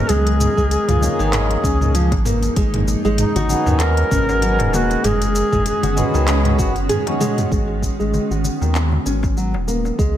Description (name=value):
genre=organic downtempo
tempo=97 BPM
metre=4/4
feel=swing 56% on 16ths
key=G# dorian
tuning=A4 = 442 Hz
part: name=clear duduk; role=melody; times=0.0-6.9 s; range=D#4 to A#4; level=-23 LUFS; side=equal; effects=digital delay
part: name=hand-pumped harmonium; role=accompaniment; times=0.0-7.5 s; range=G#3 to C#5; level=-25 LUFS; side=left 1 dB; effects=vintage 12-bit sampler grit, sidechain pumping, digital delay
part: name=granular cloud pad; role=sustained chords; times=0.0-10.2 s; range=D#3 to C#5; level=-27 LUFS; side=right 1 dB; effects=built-in reverb, sidechain pumping
part: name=nylon-string guitar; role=arpeggios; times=0.0-10.2 s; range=D#3 to G#4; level=-23 LUFS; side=equal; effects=low-pass filter, digital delay
part: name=warm sub bass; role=bass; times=0.0-10.2 s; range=D#1 to D#2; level=-20 LUFS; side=equal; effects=sidechain pumping
part: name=organic electronic drum kit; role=drums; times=0.1-10.1 s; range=handclaps, hi-hat, shaker, toms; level=-24 LUFS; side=equal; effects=none
part: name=darbuka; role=percussion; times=0.4-10.0 s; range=none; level=-29 LUFS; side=left 3 dB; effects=none
part: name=electronic kick drum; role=drums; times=0.6-10.1 s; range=none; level=-21 LUFS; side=equal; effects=none
room=light reverb, small room ambience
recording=none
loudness=-15 LUFS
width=side -11 dB against mid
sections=0.0-7.5 A section; 7.5-10.2 B section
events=break 6.9-7.5; drum fill 7.1-7.5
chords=0.1 C#6; 2.6 G#m; 5.0 F#sus2; 7.5 G#m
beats=| 0.09 0.71 1.33 1.95 | 2.57 3.19 3.81 4.42 | 5.04 5.66 6.28 6.90 | 7.52 8.13 8.75 9.37 | 9.99